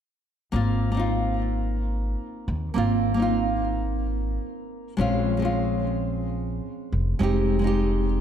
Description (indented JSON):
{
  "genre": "sunset chillout",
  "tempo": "108 BPM",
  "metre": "4/4",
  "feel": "straight",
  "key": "Ab major",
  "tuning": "A4 = 441 Hz",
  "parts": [
    { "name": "nylon-string guitar", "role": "accompaniment", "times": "0.5-8.2 s", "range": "Ab3 to G4", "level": "-25 LUFS", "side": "moving between left 2 dB and right 4 dB", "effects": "auto-pan, ping-pong delay" },
    { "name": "upright bass", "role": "bass", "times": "0.5-8.2 s", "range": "F1 to Eb2", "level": "-26 LUFS", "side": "equal", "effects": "none" }
  ],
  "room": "moderate concert hall reverb, RT60 2.1 s",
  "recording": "dark, warm production",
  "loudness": "-23 LUFS",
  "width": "side -9 dB against mid",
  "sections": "0.5-8.2 A section",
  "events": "none",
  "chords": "0.5 Ab69; 5.0 Bbm9; 7.2 Fm9",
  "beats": "| 0.54 1.10 1.65 2.21 | 2.77 3.32 3.88 4.43 | 4.99 5.54 6.10 6.65 | 7.21 7.76"
}